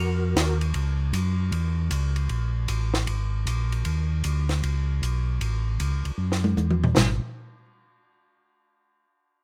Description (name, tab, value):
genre	soul jazz organ trio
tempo	155 BPM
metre	4/4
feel	swing 65% on 8ths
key	unclear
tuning	A4 = 439 Hz
part	percussive tonewheel organ	melody	0.0-0.6 s	F#4 to A#4	-33 LUFS	equal	slow rotary speaker, chorus vibrato
part	mellow tonewheel organ	bass	0.0-7.2 s	G#1 to F#2	-26 LUFS	equal	overdrive, chorus vibrato, slow rotary speaker
part	compact cocktail drum kit	drums	0.4-7.1 s	china cymbal, hi-hat, ride cymbal, snare drum, toms	-31 LUFS	equal	none
room	small room ambience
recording	rough home demo mix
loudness	-25 LUFS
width	mono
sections	0.8-7.0 A section; 7.0-8.5 B section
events	drum fill 6.2-7.0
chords	0.0 D#5; 0.8 C#m; 2.3 G#sus2; 3.9 Bmadd9; 5.4 A; 7.0 N.C.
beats	0.36 | 0.75 1.14 1.53 1.92 | 2.30 2.69 3.08 3.47 | 3.86 4.24 4.63 5.02 | 5.41 5.80 6.18 6.57 | 6.96